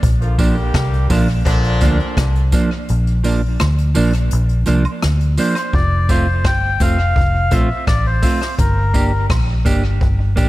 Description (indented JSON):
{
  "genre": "roots reggae",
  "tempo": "84 BPM",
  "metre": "4/4",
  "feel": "straight",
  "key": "F major",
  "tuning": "A4 = 440 Hz",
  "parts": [
    { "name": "vintage muted fingered electric bass", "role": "bass", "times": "0.0-10.5 s", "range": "F1 to D2", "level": "-16 LUFS", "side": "equal", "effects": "none" },
    { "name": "jazz brush drum kit", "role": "drums", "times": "0.0-10.5 s", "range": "hi-hat, kick drum, rim click", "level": "-19 LUFS", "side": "equal", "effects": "none" },
    { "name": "clear horn section", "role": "second line", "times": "0.2-2.5 s", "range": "Bb2 to G4", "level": "-24 LUFS", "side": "left 1 dB", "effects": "tape echo" },
    { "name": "clean electric guitar", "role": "accompaniment", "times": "0.4-10.5 s", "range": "F3 to G4", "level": "-22 LUFS", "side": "right 3 dB", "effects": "tape echo" },
    { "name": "tambourine and woodblock", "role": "percussion", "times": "0.4-10.5 s", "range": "none", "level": "-31 LUFS", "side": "right 5 dB", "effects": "none" },
    { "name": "melodica", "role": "melody", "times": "5.4-9.3 s", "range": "Bb4 to G5", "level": "-21 LUFS", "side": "left 2 dB", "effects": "tape echo" }
  ],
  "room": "little or no reverb",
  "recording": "echo-heavy mix",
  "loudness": "-14 LUFS",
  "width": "side -17 dB against mid",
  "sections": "0.0-5.7 A section; 5.7-10.5 B section",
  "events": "kick muted 2.9-5.7",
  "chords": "0.0 Bb; 5.7 F; 8.6 Gm"
}